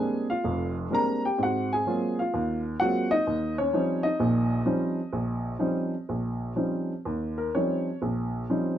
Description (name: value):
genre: solo jazz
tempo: 127 BPM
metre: 4/4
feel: swing 67% on 8ths, rubato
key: Eb mixolydian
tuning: A4 = 442 Hz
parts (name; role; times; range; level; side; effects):
- warm upright piano; solo; 0.0-8.8 s; F1 to Bb5; -25 LUFS; equal; none
room: moderate studio reverb, RT60 0.5 s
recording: dark, warm production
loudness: -25 LUFS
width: side -11 dB against mid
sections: 0.0-7.1 A section; 7.1-8.8 B section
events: upright piano solo 7.1-8.8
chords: 0.0 Bb13; 1.4 Ab13; 3.3 Eb13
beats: 0.44 0.92 | 1.40 1.88 2.34 2.80 | 3.27 3.73 4.20 4.66 | 5.12 5.59 6.07 6.57 | 7.06 7.54 8.02 8.49